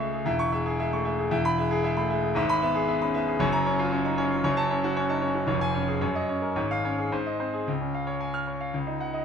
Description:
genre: classical, virtuoso piano study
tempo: 114 BPM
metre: 2/4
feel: rubato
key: Db major from 3.4 s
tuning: A4 = 444 Hz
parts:
  - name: bright concert grand piano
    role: solo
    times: 0.0-9.2 s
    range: E1 to F6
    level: -24 LUFS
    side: equal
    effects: none
room: moderate large studio reverb, RT60 1.3 s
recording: minimal, uncompressed stereo recording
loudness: -24 LUFS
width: side -7 dB against mid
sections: 0.0-7.7 A section; 7.7-9.2 B section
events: none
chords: 0.3 C#m/E; 1.3 E; 2.4 E/G#; 3.4 Gbmaj7; 4.4 Gbm; 5.5 Db/F; 6.0 Ebm7/Gb; 6.6 Db/Ab; 7.1 Ab; 7.7 Db; 8.7 Ebm7/Db

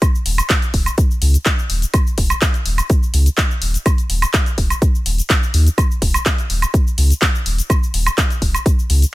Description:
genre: progressive house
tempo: 125 BPM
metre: 4/4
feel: straight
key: unclear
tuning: A4 = 440 Hz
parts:
  - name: deep house drum kit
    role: drums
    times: 0.0-9.1 s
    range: cabasa, handclaps, hi-hat, woodblock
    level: -20 LUFS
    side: equal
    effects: none
  - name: electronic kick drum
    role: drums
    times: 0.0-8.8 s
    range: none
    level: -16 LUFS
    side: equal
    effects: none
  - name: saturated sub bass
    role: bass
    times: 0.3-9.0 s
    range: Eb1 to Eb2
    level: -15 LUFS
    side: equal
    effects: sidechain pumping
room: little or no reverb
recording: none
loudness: -14 LUFS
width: side -18 dB against mid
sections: 0.0-9.1 A section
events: none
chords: none

